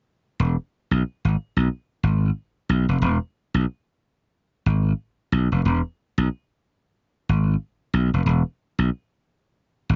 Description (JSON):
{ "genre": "funk", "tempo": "92 BPM", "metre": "4/4", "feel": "swing 60% on 16ths", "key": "unclear", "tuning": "A4 = 440 Hz", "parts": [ { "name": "slap bass", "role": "bass", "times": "0.4-10.0 s", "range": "E1 to B1", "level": "-21 LUFS", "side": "equal", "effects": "none" } ], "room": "little or no reverb", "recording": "nothing above 7.6 kHz", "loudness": "-24 LUFS", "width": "mono", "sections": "0.4-10.0 A section", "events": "none", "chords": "none", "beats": "| 0.40 1.05 1.71 2.36 | 3.02 3.67 4.33 4.98 | 5.64 6.29 6.95 7.61 | 8.26 8.92 9.57" }